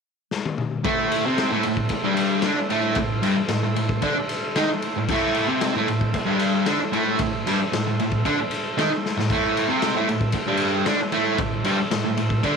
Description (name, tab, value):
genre	garage rock duo or trio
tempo	114 BPM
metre	4/4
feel	straight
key	A minor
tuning	A4 = 439 Hz
part	raw garage drum kit	drums	0.3-12.6 s	crash cymbal, kick drum, ride cymbal, snare drum, toms	-26 LUFS	left 5 dB	none
part	fuzz guitar	riff	0.8-12.6 s	G2 to D#4	-21 LUFS	right 1 dB	distortion
part	overdriven combo organ	sustained chords	0.9-12.6 s	A4 to E5	-31 LUFS	right 11 dB	none
room	light reverb, small room ambience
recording	1960s-style stereo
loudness	-20 LUFS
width	side -5 dB against mid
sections	0.9-12.6 A section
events	drum fill 0.3-0.9, 9.0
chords	0.0 N.C.; 0.9 Am